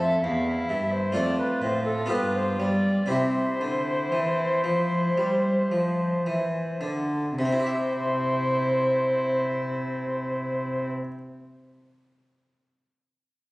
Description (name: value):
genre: classical, baroque-style sonata movement with continuo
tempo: 53-66 BPM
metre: 4/4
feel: straight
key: C major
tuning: A4 = 440 Hz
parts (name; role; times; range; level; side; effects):
- alto recorder; melody; 0.0-10.9 s; A4 to F5; -26 LUFS; equal; none
- warm violin; second line; 0.0-10.9 s; E4 to A4; -35 LUFS; right 1 dB; none
- harpsichord; accompaniment; 0.0-11.2 s; E2 to E5; -30 LUFS; equal; none
- warm cello; bass; 0.0-10.9 s; E2 to G3; -28 LUFS; equal; none
room: moderate recital hall reverb, RT60 1.8 s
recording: recorded on a phone in the room, club reverb, compression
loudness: -23 LUFS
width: side -20 dB against mid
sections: 0.0-7.4 A section; 7.4-11.8 B section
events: slowing down 0.0-7.4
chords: 0.0 Am; 1.1 F6; 2.1 G7; 3.1 C